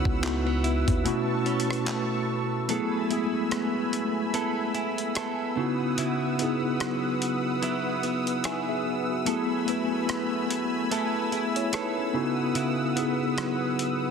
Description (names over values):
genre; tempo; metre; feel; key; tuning
contemporary R&B; 73 BPM; 4/4; swing 58% on 16ths; unclear; A4 = 441 Hz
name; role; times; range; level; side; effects
mellow tine electric piano; accompaniment; 0.0-14.1 s; G#3 to G#5; -28 LUFS; left 2 dB; medium stereo tremolo
lush unison pad; sustained chords; 0.0-14.1 s; A3 to E6; -32 LUFS; equal; chorus
direct-recorded clean electric guitar; arpeggios; 0.0-14.1 s; B2 to A4; -32 LUFS; right 6 dB; ping-pong delay
long sustained 808-style bass; bass; 0.1-1.0 s; C#2 to D#2; -28 LUFS; equal; none
dusty soul sampler-style drum kit; drums; 0.1-14.0 s; handclaps, hi-hat, kick drum, rim click; -32 LUFS; equal; soft clipping on snare
room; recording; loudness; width
light reverb; dense, heavily limited modern master; -25 LUFS; side -6 dB against mid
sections
0.0-2.7 A section; 2.7-14.1 B section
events
kick muted 1.0-2.7, 2.7-14.1; tine electric piano fill 8.0-9.3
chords
0.0 C#m11; 1.0 B9sus4; 2.7 F#m11; 5.6 C#m11; 9.3 F#m11; 12.1 C#m11